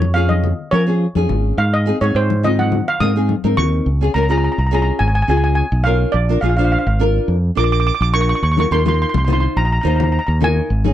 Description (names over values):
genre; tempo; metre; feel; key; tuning
calypso; 105 BPM; 4/4; straight; Db major; A4 = 440 Hz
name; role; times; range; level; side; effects
steel pan; melody; 0.0-10.9 s; C5 to Eb6; -20 LUFS; right 2 dB; none
fingered electric bass; bass; 0.0-10.9 s; Ab1 to F3; -16 LUFS; equal; none
congas; percussion; 0.0-3.7, 8.6-10.9 s; none; -24 LUFS; left 11 dB; none
nylon-string guitar; accompaniment; 0.1-10.9 s; C4 to C5; -20 LUFS; left 1 dB; double-tracked left and right
room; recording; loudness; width
little or no reverb; dry, close 1970s-style studio recording; -14 LUFS; side -12 dB against mid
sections
0.0-3.9 A section; 3.9-10.9 B section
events
steel pan solo 0.0-3.9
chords
0.0 Db/F; 1.6 Ab; 3.9 Db; 6.1 Bb; 8.4 Ebsus2